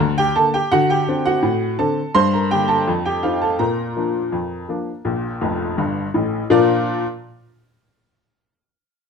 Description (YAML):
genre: ragtime piano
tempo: 83 BPM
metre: 2/4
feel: straight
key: Bb major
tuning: A4 = 441 Hz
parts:
  - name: clear upright piano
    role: solo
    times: 0.0-7.0 s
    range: F1 to C6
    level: -17 LUFS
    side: left 1 dB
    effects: none
room: moderate studio reverb, RT60 0.8 s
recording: dark, warm production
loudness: -17 LUFS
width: side -6 dB against mid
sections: 0.0-6.5 A section; 6.5-8.0 B section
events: upright piano fill 5.4-6.5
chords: 0.0 Gm; 0.7 D7; 2.2 Gm; 2.9 F7; 3.6 Bb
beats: 0.00 | 0.71 1.43 | 2.15 2.88 | 3.60 4.33 | 5.06 5.79 | 6.51